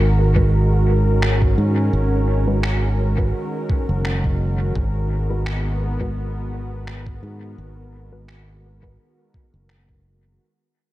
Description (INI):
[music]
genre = ambient dub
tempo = 85 BPM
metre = 4/4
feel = swing 55% on 16ths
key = G# minor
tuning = A4 = 436 Hz
[part]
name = warm analog pad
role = sustained chords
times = 0.0-10.4 s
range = D#3 to A#4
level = -25 LUFS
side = equal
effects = chorus, vintage 12-bit sampler grit
[part]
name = fingered electric bass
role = bass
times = 0.0-10.4 s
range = F#1 to G#2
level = -19 LUFS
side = equal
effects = none
[part]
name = filtered dub chord stab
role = stabs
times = 0.4-9.0 s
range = G#3 to B4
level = -31 LUFS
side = left 1 dB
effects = none
[part]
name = electronic kick drum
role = drums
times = 0.4-10.0 s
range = none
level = -22 LUFS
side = equal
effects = none
[part]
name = electronic finger snaps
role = drums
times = 1.2-9.8 s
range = none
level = -30 LUFS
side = equal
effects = dub echo
[sound]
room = light reverb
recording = none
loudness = -17 LUFS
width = side -16 dB against mid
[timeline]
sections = 0.0-10.4 A section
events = fade-out 0.0-10.4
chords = 0.0 G#m7